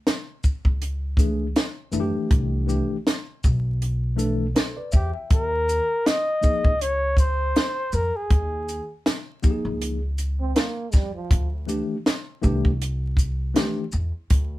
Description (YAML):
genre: hip hop, jazz-hop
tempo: 80 BPM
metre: 4/4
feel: swing 57% on 16ths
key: unclear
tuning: A4 = 440 Hz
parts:
  - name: compact cocktail drum kit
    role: drums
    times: 0.1-14.5 s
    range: hi-hat, kick drum, shaker, snare drum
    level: -20 LUFS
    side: equal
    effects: none
  - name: upright bass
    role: bass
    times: 0.6-14.6 s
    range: B1 to F#2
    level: -25 LUFS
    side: equal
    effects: none
  - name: mellow tine electric piano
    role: accompaniment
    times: 1.2-13.8 s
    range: E3 to G5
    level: -26 LUFS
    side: left 2 dB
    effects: medium stereo tremolo
  - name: breathy flugelhorn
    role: melody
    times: 5.0-8.9 s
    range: G4 to Eb5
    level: -24 LUFS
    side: left 1 dB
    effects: none
  - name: mellow trombone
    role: second line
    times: 10.4-11.5 s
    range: F3 to C4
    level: -31 LUFS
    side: right 4 dB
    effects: none
room: light reverb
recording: band playing live in one room, vinyl crackle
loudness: -21 LUFS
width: side -16 dB against mid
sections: 0.0-5.3 A section; 5.3-14.6 B section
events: none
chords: 0.0 Dmaj7sus2; 2.3 Cmaj9; 5.3 Eb9sus4; 11.3 D9sus4